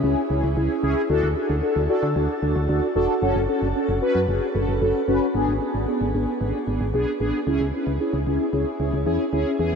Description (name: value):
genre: synth-pop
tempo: 113 BPM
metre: 4/4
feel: straight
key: unclear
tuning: A4 = 440 Hz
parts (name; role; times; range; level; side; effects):
- mellow synth brass; accompaniment; 0.0-9.8 s; B3 to B4; -22 LUFS; equal; chorus, phaser, shimmer reverb
- solid FM bass; bass; 0.0-9.8 s; E1 to D3; -24 LUFS; equal; none
room: wet huge ambient reverb, RT60 8.2 s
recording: dreamy mix soaked in reverb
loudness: -20 LUFS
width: side -6 dB against mid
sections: 0.0-5.3 A section; 5.3-9.8 B section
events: none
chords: 0.0 C#m; 1.1 D; 3.2 F#m; 5.3 G#dim; 7.5 C#m